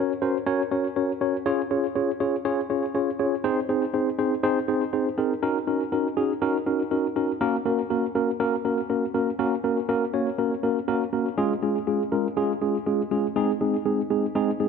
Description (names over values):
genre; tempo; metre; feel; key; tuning
pop; 121 BPM; 4/4; straight; Db major; A4 = 439 Hz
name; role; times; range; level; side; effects
mellow tine electric piano; solo; 0.0-14.7 s; Ab3 to Db5; -22 LUFS; equal; medium stereo tremolo, ping-pong delay
room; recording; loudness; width
moderate scoring stage reverb, RT60 1.6 s; none; -22 LUFS; side -6 dB against mid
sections
0.0-9.4 A section; 9.4-11.4 B section; 11.4-14.7 C section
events
none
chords
0.0 Gb; 1.5 Db; 3.4 Ab; 5.4 Ebm7; 7.4 Gb; 11.4 Db; 13.4 Ab